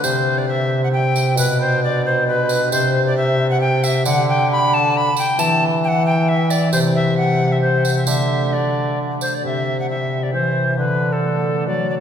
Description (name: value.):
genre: classical, renaissance-style consort dance.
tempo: 134 BPM.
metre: 3/4.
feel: straight.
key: unclear.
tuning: A4 = 440 Hz.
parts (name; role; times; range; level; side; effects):
bright alto recorder; melody; 0.0-11.9 s; A4 to B5; -20 LUFS; left 1 dB; none.
concert harp; accompaniment; 0.0-12.0 s; B2 to C5; -20 LUFS; left 1 dB; none.
warm bassoon; bass; 0.0-12.0 s; B2 to F#3; -21 LUFS; right 2 dB; none.
tambourine; percussion; 0.0-9.4 s; none; -28 LUFS; right 6 dB; none.
room: wet church reverb, RT60 3.4 s.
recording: recorded in a church or concert hall.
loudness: -15 LUFS.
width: side -8 dB against mid.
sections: 0.0-9.4 A section; 9.4-12.0 B section.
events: none.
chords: 0.0 C; 1.4 G/B; 2.7 C; 4.1 D; 5.4 Em; 6.7 C; 8.1 D; 9.4 C; 10.8 D.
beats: | 0.03 0.48 0.93 | 1.38 1.82 2.27 | 2.72 3.17 3.61 | 4.05 4.50 4.95 | 5.39 5.84 6.28 | 6.73 7.17 7.62 | 8.07 8.53 8.98 | 9.44 9.89 10.33 | 10.78 11.23 11.67.